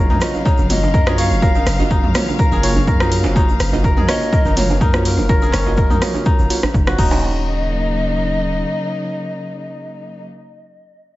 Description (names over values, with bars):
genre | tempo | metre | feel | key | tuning
afro house | 124 BPM | 4/4 | swing 53% on 16ths | Eb minor | A4 = 440 Hz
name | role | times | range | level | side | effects
dark chamber string section | sustained chords | 0.0-10.2 s | Db3 to F5 | -25 LUFS | left 1 dB | sidechain pumping
kora | arpeggios | 0.0-8.6 s | Bb3 to Db5 | -24 LUFS | left 1 dB | sidechain pumping, dub echo
deep mellow chord stab | stabs | 0.0-10.2 s | Bb3 to Eb5 | -26 LUFS | right 3 dB | chorus, sidechain pumping, dub echo
warm 808-style bass | bass | 0.0-8.6 s | Eb1 to Gb2 | -20 LUFS | equal | sidechain pumping
deep house drum kit | drums | 0.1-7.1 s | crash cymbal, hi-hat, rim click, toms | -23 LUFS | equal | overdrive
djembe | percussion | 0.1-7.2 s | none | -25 LUFS | right 2 dB | none
breathy mellow polished pan flute | melody | 0.2-10.2 s | Bb4 to F5 | -25 LUFS | left 1 dB | dub echo
egg shaker | percussion | 0.2-7.2 s | none | -38 LUFS | right 1 dB | none
electronic kick drum | drums | 0.5-7.1 s | none | -16 LUFS | equal | overdrive
room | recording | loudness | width
small room reverb | nothing above 7.7 kHz | -14 LUFS | side -17 dB against mid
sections
0.0-7.2 A section; 7.2-11.1 B section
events
drop 0.0-7.2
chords
0.0 Gbmaj7; 7.0 Ebm7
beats
0.46 0.94 | 1.42 1.91 2.39 2.87 | 3.36 3.84 4.33 4.81 | 5.29 5.78 6.26 6.75 | 7.23 7.71 8.20 8.68 | 9.16 9.65 10.13